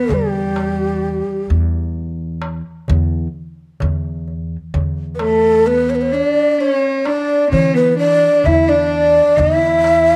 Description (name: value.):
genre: Turkish makam ensemble.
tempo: 129 BPM (eighths).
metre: 10/8.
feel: straight.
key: E makam huseyni.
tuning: A4 = 439 Hz.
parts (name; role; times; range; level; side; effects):
breathy mellow ney; melody; 0.0-10.2 s; G4 to E5; -17 LUFS; equal; cassette tape.
warm cello; second line; 0.0-10.2 s; G3 to E4; -21 LUFS; equal; cassette tape.
upright bass; bass; 0.1-10.2 s; E2 to E3; -23 LUFS; equal; none.
darbuka; percussion; 0.1-10.1 s; none; -28 LUFS; equal; none.
room: moderate spring reverb, RT60 1.3 s, small room ambience.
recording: home recording on cassette.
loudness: -16 LUFS.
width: mono.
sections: 0.0-10.2 A section.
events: none.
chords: none.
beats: | 0.10 0.56 1.03 1.49 1.96 2.42 2.88 3.35 3.81 4.27 | 4.74 5.20 5.67 6.13 6.59 7.06 7.52 7.99 8.45 8.91 | 9.38 9.84.